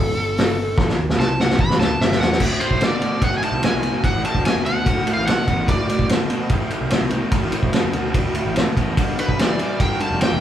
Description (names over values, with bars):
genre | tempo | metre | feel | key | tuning
blues rock power trio and southern rock | 146 BPM | 4/4 | straight | D mixolydian | A4 = 440 Hz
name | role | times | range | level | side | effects
overdriven slide guitar | melody | 0.0-6.1, 9.2-10.4 s | A4 to B5 | -24 LUFS | equal | none
fuzz picked electric bass | bass | 0.0-10.4 s | D1 to D3 | -26 LUFS | equal | overdrive
vintage drum kit | drums | 0.4-10.3 s | crash cymbal, hi-hat, kick drum, ride cymbal, snare drum | -19 LUFS | equal | none
crunchy overdriven guitar | riff | 2.4-10.4 s | D2 to E3 | -24 LUFS | equal | none
room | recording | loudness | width
light reverb | band playing live in one room | -17 LUFS | side -10 dB against mid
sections
0.0-2.4 A section; 2.4-10.4 B section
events
electric slide guitar solo 0.0-2.4; drum fill 0.8-2.4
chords
0.0 D5; 0.8 A5; 2.4 D5; 9.0 G5